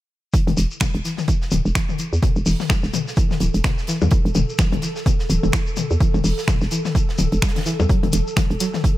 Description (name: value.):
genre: minimal techno.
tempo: 127 BPM.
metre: 4/4.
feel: swing 58% on 16ths.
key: unclear.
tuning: A4 = 441 Hz.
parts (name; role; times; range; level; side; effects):
string-like resonator pluck; riff; 0.3-8.9 s; B2 to G3; -28 LUFS; equal; chorus, sidechain pumping, dub echo.
electronic kick drum; drums; 0.3-8.9 s; none; -19 LUFS; equal; overdrive.
tight metal drum kit; drums; 0.3-9.0 s; hi-hat, snare drum; -36 LUFS; right 3 dB; high-pass filter on hats, high-pass filter on snare, high-pass filter on room.
shekere; percussion; 0.3-9.0 s; none; -32 LUFS; left 3 dB; none.
swarming drone; texture; 1.7-9.0 s; A4; -32 LUFS; right 3 dB; built-in reverb, sidechain pumping.
hollow knocking FM bass; bass; 0.5-8.6 s; D1 to E2; -20 LUFS; equal; sidechain pumping.
electronic toms and congas; percussion; 0.5-8.8 s; none; -26 LUFS; left 7 dB; tape echo.
punchy analog drum machine; drums; 0.8-8.7 s; finger snaps, hi-hat; -28 LUFS; equal; overdrive.
room: little or no reverb.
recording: none.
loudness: -18 LUFS.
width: side -15 dB against mid.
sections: 0.3-9.0 A section.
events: none.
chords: none.